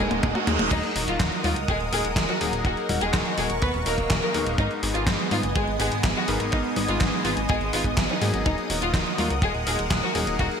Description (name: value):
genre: italo disco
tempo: 124 BPM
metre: 4/4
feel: straight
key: Eb minor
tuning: A4 = 439 Hz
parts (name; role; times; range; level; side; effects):
- dark symphonic violin section; melody; 0.0-10.5 s; Ab3 to Cb5; -28 LUFS; left 1 dB; ping-pong delay
- lush unison pad; sustained chords; 0.0-10.6 s; Cb4 to Eb6; -29 LUFS; right 1 dB; chorus, phaser
- bright electric grand piano; stabs; 0.0-10.6 s; Ab2 to Cb5; -31 LUFS; left 4 dB; digital delay
- chorused synth bass; bass; 0.0-10.5 s; Eb1 to Ab2; -29 LUFS; equal; none
- riser and reverse cymbal; sound effects; 0.0-0.7 s; none; -30 LUFS; right 4 dB; none
- gated 80s digital drum machine; drums; 0.1-10.6 s; congas, crash cymbal, handclaps, hi-hat, snare drum, toms; -28 LUFS; equal; gated reverb, gated reverb snare, overdrive
- kick drum; drums; 0.2-10.5 s; none; -25 LUFS; equal; none
room: moderate lush hall reverb, RT60 1.8 s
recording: bright 1980s-style digital production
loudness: -22 LUFS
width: side -7 dB against mid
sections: 0.7-10.6 A section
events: drum fill 0.0-0.7; riser 0.0-0.7; reverse cymbal 0.0-0.7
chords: 0.0 Ebm; 4.6 Abm; 8.5 Ebm